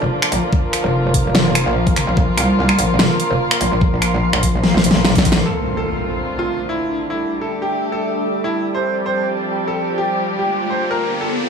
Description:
heavy wobble dubstep; 146 BPM; 4/4; half-time; A4 = 440 Hz
dark chamber string section; sustained chords; 0.0-11.5 s; D3 to G4; -24 LUFS; equal; sidechain pumping, low-pass filter
metallic wobble bass; bass; 0.0-5.4 s; F1 to C2; -18 LUFS; left 1 dB; distortion, chorus, overdrive
granular cloud pad; texture; 0.0-11.5 s; D4 to C6; -23 LUFS; right 1 dB; built-in reverb, sidechain pumping
dubstep drum kit; drums; 0.2-5.4 s; finger snaps, hi-hat, snare drum; -17 LUFS; equal; overdrive
electronic kick drum; drums; 0.5-5.3 s; -17 LUFS; equal; overdrive
bright concert grand piano; melody; 5.5-11.4 s; E4 to C5; -22 LUFS; equal; digital delay
impact and riser; sound effects; 5.5-11.5 s; -27 LUFS; equal
moderate digital room reverb, RT60 1.3 s, digital ambience; studio reverb; -15 LUFS; side -6 dB against mid
0.0-5.5 A section; 5.5-11.5 B section
drop 0.0-5.5; drum fill 4.6-5.5; impact 5.5-7.1; riser 9.8-11.5
0.0 Bb; 5.5 Dm7; 7.1 Gsus2; 8.7 Fsus2; 10.4 Gm

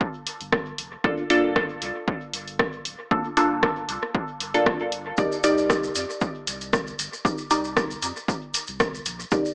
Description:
dub techno; 116 BPM; 4/4; swing 54% on 16ths; G minor; A4 = 443 Hz
electronic kick drum; drums; 0.0-9.4 s; -27 LUFS; equal; overdrive
punchy analog drum machine; drums; 0.3-9.2 s; hi-hat, rim click; -26 LUFS; equal; overdrive, dub echo
warm sub bass; bass; 0.4-9.4 s; D1 to F2; -41 LUFS; equal; sidechain pumping
filtered dub chord stab; stabs; 1.0-9.5 s; Bb3 to D5; -24 LUFS; equal; chorus, phaser, dub echo
maracas; percussion; 5.2-9.5 s; -32 LUFS; equal
moderate spring reverb, RT60 1.5 s, digital ambience; echo-heavy mix, small speaker sound; -22 LUFS; side -33 dB against mid
0.0-9.5 A section
0.0 Gm7; 5.2 Cm7

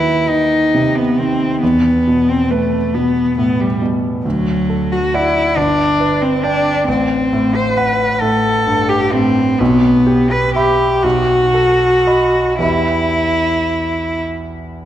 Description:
classical, romantic duo for cello and grand piano; 36-47 BPM (dotted quarters); 6/8; rubato; E minor; A4 = 441 Hz
clear cello; melody; 0.0-14.2 s; F#3 to C5; -14 LUFS; left 1 dB
clear grand piano; accompaniment; 0.0-14.9 s; G1 to B5; -17 LUFS; right 1 dB
wet concert hall reverb, RT60 1.9 s; -12 LUFS; side -11 dB against mid
0.0-14.9 A section
0.0 B/D#; 1.6 E5; 4.2 D; 5.6 G; 6.9 Am13; 9.6 Em/B; 11.0 B7; 12.6 Em

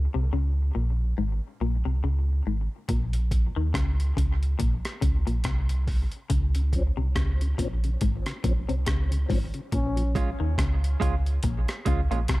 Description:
dub reggae; 70 BPM; 4/4; swing 58% on 16ths; Bb minor; A4 = 440 Hz
warm sub bass; bass; 0.0-12.4 s; Ab1 to Eb2; -25 LUFS; equal
semi-hollow electric guitar; riff; 0.1-12.4 s; Ab2 to Eb3; -32 LUFS; left 4 dB; wide subtle chorus
breakbeat sampler-style drum kit; drums; 2.9-12.4 s; hi-hat, kick drum, rim click; -27 LUFS; equal
mellow tonewheel organ; accompaniment; 6.6-10.0 s; Bb2 to Db4; -38 LUFS; left 3 dB; chorus vibrato, slow rotary speaker, high-pass filter, dub echo
mellow trombone; melody; 9.7-10.1 s; Db4; -35 LUFS; left 2 dB; dub echo
mellow electric guitar; accompaniment; 10.2-12.2 s; Ab3 to F4; -32 LUFS; right 6 dB; high-pass filter, dub echo
digital ambience; -24 LUFS; side -19 dB against mid
0.0-12.4 A section
break 0.0-9.7
0.0 Db5; 2.9 Bbm; 6.3 Dbmaj7; 9.7 Bbm7

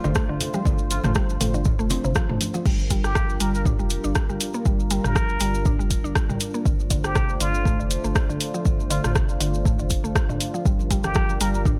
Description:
afro house; 120 BPM; 4/4; swing 55% on 16ths; G minor; A4 = 438 Hz
dark analog pad; sustained chords; 0.0-11.8 s; G3 to C5; -34 LUFS; equal; chorus, sidechain pumping
mallet-like synth pluck; arpeggios; 0.0-11.8 s; A2 to D4; -31 LUFS; equal; chorus, sidechain pumping, delay
warm sub bass; bass; 0.0-11.7 s; F1 to G1; -30 LUFS; equal; sidechain pumping
congas; percussion; 0.0-2.6, 10.7-11.6 s; -34 LUFS; equal
maracas; percussion; 0.0-11.8 s; -37 LUFS; equal
deep house drum kit; drums; 0.2-11.8 s; crash cymbal, hi-hat, rim click, toms; -30 LUFS; equal
electronic kick drum; drums; 0.2-11.8 s; -25 LUFS; equal
trumpet with plunger mute; melody; 0.9-11.6 s; F4 to Bb4; -34 LUFS; equal; delay
little or no reverb; -23 LUFS; mono
0.0-2.7 A section; 2.7-11.8 A section
drop 0.0-2.7, 2.7-11.8
0.0 Dm7; 2.7 Gm7; 6.7 Dm7; 10.7 Gm7

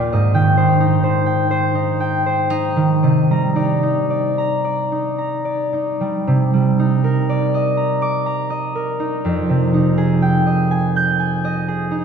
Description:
classical, solo harp piece; 54-67 BPM; 3/4; rubato; C minor; A4 = 440 Hz
concert harp; solo; 0.0-12.0 s; Eb2 to G6; -15 LUFS; right 1 dB
wet church reverb, RT60 3.0 s; heard from further back in the room; -15 LUFS; side -6 dB against mid
0.0-6.3 A section; 6.3-12.0 B section
0.1 Abmaj7; 3.0 Cm9; 9.2 Fm9

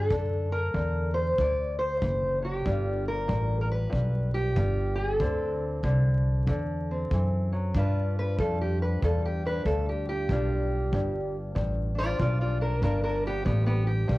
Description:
acoustic country blues, solo or duo; 94 BPM; 4/4; swing 62% on 8ths; G mixolydian; A4 = 437 Hz
fingerpicked steel-string acoustic guitar; melody; 0.0-14.2 s; G2 to D5; -29 LUFS; equal; cassette tape
upright bass; bass; 0.0-14.2 s; F#1 to G2; -27 LUFS; equal; transformer saturation
kick drum; drums; 0.1-14.2 s; -34 LUFS; equal; cassette tape
small room ambience; home recording on cassette, vinyl crackle; -25 LUFS; side -19 dB against mid
0.0-7.8 A section; 7.8-14.2 B section
steel-string acoustic guitar solo 7.8-14.2
0.0 D7; 2.7 G7; 5.2 D7; 7.8 G7

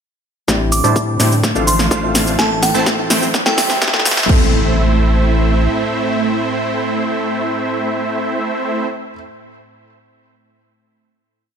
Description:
EDM, festival progressive house; 126 BPM; 4/4; straight; A minor; A4 = 438 Hz
felt-muted upright piano; accompaniment; 0.5-9.1 s; A2 to A4; -25 LUFS; left 6 dB; sidechain pumping, digital delay
lush unison pad; sustained chords; 0.5-8.9 s; A2 to E4; -24 LUFS; right 2 dB; chorus, sidechain pumping
supersaw stab; riff; 0.5-8.9 s; G3 to A5; -19 LUFS; right 1 dB; sidechain pumping, low-pass filter, digital delay
saturated sub bass; bass; 0.5-5.7 s; A1 to A2; -18 LUFS; equal; sidechain pumping
big-room dance drum kit; drums; 0.5-4.4 s; crash cymbal, hi-hat, shaker, snare drum; -17 LUFS; equal
electronic kick drum; drums; 0.5-4.4 s; -17 LUFS; equal; high-pass filter on kick
riser and impact; sound effects; 2.0-9.2 s; -25 LUFS; equal
glassy synth bell; melody; 0.7-3.7 s; G5 to D6; -21 LUFS; right 3 dB; chorus, digital delay
light reverb, digital ambience; high-pass filter; -13 LUFS; side -7 dB against mid
0.5-4.3 build; 4.3-8.1 final chord
build-up 0.5-4.3; drum fill 0.5-4.3; filter sweep on supersaw synth 0.5-4.3; filter sweep 0.5-4.3
0.5 Cadd9/A; 1.4 Dm7/A; 2.4 Am

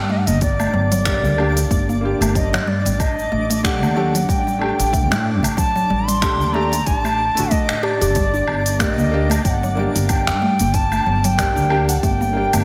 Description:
organic downtempo; 93 BPM; 4/4; swing 56% on 16ths; G harmonic minor; A4 = 439 Hz
bright reedy bansuri; melody; 0.0-12.6 s; D5 to C6; -24 LUFS; equal; digital delay, slapback echo
felt-muted upright piano; accompaniment; 0.0-12.6 s; D3 to G4; -28 LUFS; equal; sidechain pumping, tape echo, slapback echo
mallet-like synth pluck; arpeggios; 0.0-12.6 s; D3 to G4; -26 LUFS; equal; chorus, phaser, tape echo
upright bass; bass; 0.0-12.6 s; G1 to A2; -24 LUFS; equal; tube saturation, sidechain pumping
twinkling granular texture; texture; 0.0-12.6 s; D4 to D6; -35 LUFS; equal; built-in reverb
organic electronic drum kit; drums; 0.3-12.6 s; finger snaps, hi-hat, shaker, woodblock; -27 LUFS; equal; overdrive
electronic kick drum; drums; 0.4-12.2 s; -24 LUFS; equal
moderate lush hall reverb, RT60 2.6 s; big arena sound; -18 LUFS; mono
0.0-12.6 A section
0.0 Gm; 3.0 Gsus2; 8.2 Gm

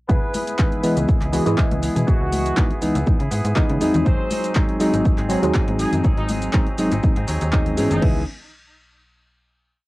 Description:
filtered disco house; 121 BPM; 4/4; swing 54% on 16ths; C# minor; A4 = 440 Hz
brilliant trumpet section; melody; 0.1-8.0 s; D#4 to B#4; -28 LUFS; equal; sidechain pumping, low-pass filter, cassette tape, analog delay
direct-recorded clean electric guitar; riff; 0.1-8.2 s; F#3 to G#4; -29 LUFS; equal; sidechain pumping, low-pass filter, cassette tape
slap-like FM bass; bass; 0.1-8.3 s; F#1 to C#3; -24 LUFS; equal; sidechain pumping, low-pass filter
electronic kick drum; drums; 0.1-8.1 s; -19 LUFS; equal; cassette tape
punchy analog drum machine; drums; 0.1-8.1 s; crash cymbal, handclaps, hi-hat, shaker; -31 LUFS; equal; overdrive, sidechain pumping on perc, cassette tape, sidechain pumping on hats, sidechain pumping on cymbals
tambourine and congas; percussion; 0.1-8.0 s; -30 LUFS; left 2 dB; sidechain pumping on perc, low-pass filter on perc
barky reed electric piano; accompaniment; 0.6-8.3 s; E3 to D#5; -22 LUFS; equal; overdrive, phaser, vintage 12-bit sampler grit, sidechain pumping, low-pass filter, cassette tape
light reverb; home recording on cassette, faint mains hum; -17 LUFS; side -19 dB against mid
0.1-8.0 groove; 8.0-9.9 final chord
filter sweep 0.1-8.0
0.1 C#m7; 4.1 G#7; 8.0 C#m7

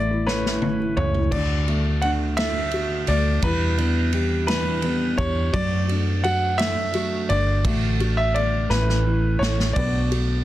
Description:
six-eight pop ballad; 57 BPM (dotted quarters); 6/8; straight; D major; A4 = 440 Hz
clear baby grand piano; melody; 0.0-10.4 s; B4 to F#5; -26 LUFS; equal; plate reverb
felt-muted upright piano; accompaniment; 0.0-10.4 s; D3 to A4; -27 LUFS; left 3 dB; plate reverb
fingerpicked steel-string acoustic guitar; arpeggios; 0.0-10.4 s; E2 to F#4; -30 LUFS; right 4 dB; plate reverb
vintage muted fingered electric bass; bass; 0.0-10.4 s; G1 to F#2; -24 LUFS; equal
unplugged drum kit; drums; 0.3-10.3 s; crash cymbal, kick drum, ride cymbal, snare drum, toms; -27 LUFS; right 1 dB; soft clipping on snare
moderate booth ambience, RT60 0.2 s; dense, heavily limited modern master; -19 LUFS; side -14 dB against mid
0.0-1.3 A section; 1.3-10.4 B section
drum fill 0.3-1.3, 8.7-9.8
0.0 A; 1.3 D; 3.4 Em7; 5.5 D/F#; 7.7 D/A; 8.7 A; 9.8 Bm7

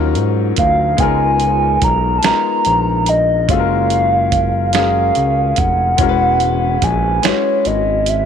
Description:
slow six-eight R&B; 48 BPM (dotted quarters); 6/8; straight; F# major; A4 = 439 Hz
clear concert grand piano; accompaniment; 0.0-8.3 s; F#3 to B4; -19 LUFS; left 14 dB
smooth synth bass; bass; 0.0-8.3 s; E1 to G#2; -19 LUFS; right 1 dB
dusty soul sampler-style drum kit; drums; 0.2-8.3 s; hi-hat, kick drum, snare drum; -19 LUFS; right 5 dB
hollow clarinet-like synth lead; melody; 0.6-8.3 s; C#5 to A#5; -15 LUFS; right 1 dB; chorus, slapback echo
light reverb; 1960s-style stereo; -12 LUFS; side -8 dB against mid
0.0-8.3 A section
0.0 D#m9; 1.0 C#13; 3.5 F#maj9; 6.0 E69

